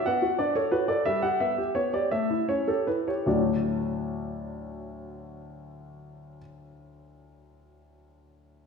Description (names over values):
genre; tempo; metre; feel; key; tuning
classical-period piano sonatina; 49-62 BPM (dotted quarters); 6/8; rubato; D major; A4 = 441 Hz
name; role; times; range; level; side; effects
clear grand piano; solo; 0.0-8.7 s; D2 to F#5; -26 LUFS; equal; none
room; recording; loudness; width
wet scoring stage reverb, RT60 1.6 s; recorded in a church or concert hall; -24 LUFS; side -5 dB against mid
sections
0.0-3.3 A section; 3.3-7.9 B section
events
slowing down 0.0-3.3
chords
0.1 Bm7; 1.0 G6; 2.1 A7; 3.3 D